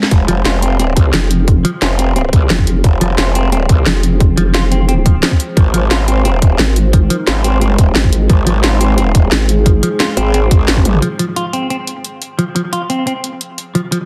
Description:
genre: dark technical drum and bass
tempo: 176 BPM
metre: 4/4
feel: straight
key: F minor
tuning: A4 = 442 Hz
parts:
  - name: deep dark ambient pad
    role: sustained chords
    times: 0.0-14.1 s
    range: Ab3 to Ab5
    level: -26 LUFS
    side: equal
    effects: chorus, built-in reverb, sidechain pumping
  - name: drum and bass drum kit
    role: drums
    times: 0.0-14.0 s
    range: hi-hat, snare drum, toms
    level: -19 LUFS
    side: equal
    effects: none
  - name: growl bass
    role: bass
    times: 0.1-11.0 s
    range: Eb1 to C2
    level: -16 LUFS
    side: equal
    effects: chorus, tube saturation, sidechain pumping
  - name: electronic kick drum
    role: drums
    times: 0.1-10.8 s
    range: none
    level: -12 LUFS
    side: equal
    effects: overdrive
  - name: clean electric guitar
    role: arpeggios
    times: 0.3-14.0 s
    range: F3 to F4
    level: -21 LUFS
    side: equal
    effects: sidechain pumping, dub echo
  - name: vowel-sweep wobble bass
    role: bass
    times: 1.1-9.8 s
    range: F1 to Ab1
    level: -15 LUFS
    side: equal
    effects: chorus
room: light reverb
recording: dense, heavily limited modern master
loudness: -13 LUFS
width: mono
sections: 0.0-11.0 A section; 11.0-14.1 B section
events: drum fill 10.8; filter sweep on ambient pad 11.0-14.1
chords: 0.1 Fm; 5.6 Ab; 11.0 Fm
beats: | 0.11 0.46 0.80 1.14 | 1.48 1.82 2.16 2.50 | 2.84 3.18 3.52 3.86 | 4.21 4.55 4.89 5.23 | 5.57 5.91 6.25 6.59 | 6.93 7.27 7.61 7.96 | 8.30 8.64 8.98 9.32 | 9.66 10.00 10.34 10.68 | 11.02 11.36 11.71 12.05 | 12.39 12.73 13.07 13.41 | 13.75

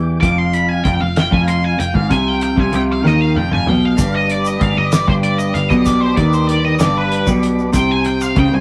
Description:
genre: psychedelic rock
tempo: 64 BPM (dotted quarters)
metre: 6/8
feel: straight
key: G phrygian dominant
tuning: A4 = 439 Hz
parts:
  - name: tonewheel organ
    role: sustained chords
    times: 0.0-8.6 s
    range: F3 to F5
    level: -28 LUFS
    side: equal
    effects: slow rotary speaker
  - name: electric guitar through a small old amp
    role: riff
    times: 0.0-8.6 s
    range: F2 to E3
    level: -19 LUFS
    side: equal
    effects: none
  - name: picked electric bass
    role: bass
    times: 0.0-8.6 s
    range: F1 to E2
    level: -22 LUFS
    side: equal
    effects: none
  - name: octave-fuzz lead guitar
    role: melody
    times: 0.2-8.6 s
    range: B4 to D6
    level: -22 LUFS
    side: equal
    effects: wah, distortion
  - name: cloth-damped thuddy drum kit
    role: drums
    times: 0.2-8.5 s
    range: hi-hat, kick drum, snare drum, toms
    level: -21 LUFS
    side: equal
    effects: none
  - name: egg shaker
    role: percussion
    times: 4.0-8.4 s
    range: none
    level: -35 LUFS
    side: equal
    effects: none
room: light reverb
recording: rough rehearsal-room recording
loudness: -15 LUFS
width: mono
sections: 0.0-8.6 A section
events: lead electric guitar solo 0.0-8.6; drum fill 3.0-4.0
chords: 0.2 F5; 4.0 G; 7.7 C5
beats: | 0.23 1.17 | 2.10 3.04 | 3.98 4.92 | 5.86 6.80 | 7.74

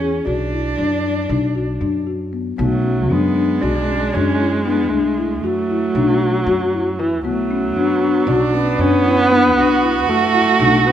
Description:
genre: contemporary instrumental, chamber music in an uneven meter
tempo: 232 BPM (eighths)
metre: 9/8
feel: straight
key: B dorian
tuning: A4 = 441 Hz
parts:
  - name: dark cello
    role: melody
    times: 0.0-10.9 s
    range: A3 to F#4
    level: -20 LUFS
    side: right 5 dB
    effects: none
  - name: folk marimba with soft mallets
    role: arpeggios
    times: 0.0-10.9 s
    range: B3 to G#4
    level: -20 LUFS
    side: left 5 dB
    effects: none
  - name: upright bass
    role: bass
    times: 0.0-10.9 s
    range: B1 to F#2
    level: -23 LUFS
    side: right 1 dB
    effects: none
  - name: warm viola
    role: second line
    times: 2.6-10.9 s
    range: E3 to B3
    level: -19 LUFS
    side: right 1 dB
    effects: none
room: moderate recital hall reverb, RT60 1.8 s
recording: none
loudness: -15 LUFS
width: side -10 dB against mid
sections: 0.0-2.6 A section; 2.6-10.9 B section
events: none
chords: 0.3 Bm; 2.6 Bm7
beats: 0.01 | 0.27 0.53 0.79 1.05 1.31 1.56 1.82 2.08 2.34 | 2.60 2.86 3.12 3.37 3.63 3.89 4.15 4.41 4.66 | 4.92 5.18 5.44 5.70 5.96 6.21 6.47 6.73 6.99 | 7.25 7.50 7.76 8.02 8.28 8.54 8.79 9.05 9.31 | 9.57 9.83 10.08 10.34 10.60 10.86

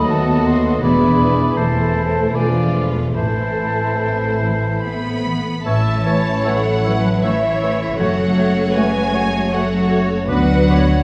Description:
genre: classical, slow romantic movement for symphony orchestra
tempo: 69-84 BPM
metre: 3/4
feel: rubato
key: A minor, A major from 5.7 s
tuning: A4 = 440 Hz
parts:
  - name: warm studio violin section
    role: melody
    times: 0.0-11.0 s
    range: A4 to B5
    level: -29 LUFS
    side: equal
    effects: none
  - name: bright oboe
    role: second line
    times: 0.0-10.9 s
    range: B4 to D#5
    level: -30 LUFS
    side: equal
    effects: none
  - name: silver concert flute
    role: second line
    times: 0.0-10.8 s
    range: G#5 to E6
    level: -28 LUFS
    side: equal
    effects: none
  - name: warm clarinet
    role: second line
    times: 0.0-10.9 s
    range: A3 to B4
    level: -30 LUFS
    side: equal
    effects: none
  - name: warm studio violin section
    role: second line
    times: 0.0-11.0 s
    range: E4 to C#5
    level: -30 LUFS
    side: equal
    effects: none
  - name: mellow bassoon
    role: accompaniment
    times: 0.0-10.9 s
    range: E3 to F#3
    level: -30 LUFS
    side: equal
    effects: none
  - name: warm studio viola section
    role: accompaniment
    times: 0.0-11.0 s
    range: F#3 to E5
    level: -26 LUFS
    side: equal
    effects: none
  - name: mellow French horn section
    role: sustained chords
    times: 0.0-11.0 s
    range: E3 to F#4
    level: -26 LUFS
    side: equal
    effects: none
  - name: concert harp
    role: arpeggios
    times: 0.0-11.0 s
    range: F#2 to A5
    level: -26 LUFS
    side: equal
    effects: none
  - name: rich studio cello section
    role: bass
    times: 0.0-11.0 s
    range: D#2 to B3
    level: -25 LUFS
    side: equal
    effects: none
  - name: warm studio double bass section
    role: bass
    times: 0.0-11.0 s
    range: E1 to D#2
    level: -25 LUFS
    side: equal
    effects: none
room: wet recital hall reverb, RT60 1.4 s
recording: heard from further back in the room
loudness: -17 LUFS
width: mono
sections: 0.0-5.7 A section; 5.7-11.0 B section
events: none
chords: 0.0 D#dim7; 0.8 E7; 1.6 Am/E; 2.4 E7b9; 3.2 Am; 5.7 A; 8.0 F#m; 10.3 Bm/D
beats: 0.10 | 0.83 1.57 2.35 | 3.15 3.99 4.83 | 5.66 6.46 7.24 | 8.00 8.75 9.53 | 10.29

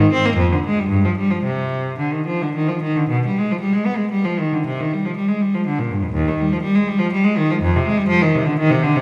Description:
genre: classical, baroque-style suite movement for unaccompanied cello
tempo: 107-124 BPM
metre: 3/4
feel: rubato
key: unclear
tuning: A4 = 441 Hz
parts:
  - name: clear cello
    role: solo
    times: 0.0-9.0 s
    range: Eb2 to C4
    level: -19 LUFS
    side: equal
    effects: none
room: wet recital hall reverb, RT60 1.6 s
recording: recorded in a church or concert hall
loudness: -19 LUFS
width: mono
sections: 0.0-3.1 A section; 3.1-9.0 A section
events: none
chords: none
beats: 0.37 0.88 | 1.42 1.97 2.53 | 3.08 3.59 4.09 | 4.62 5.13 5.63 | 6.12 6.62 7.11 | 7.61 8.12 8.60

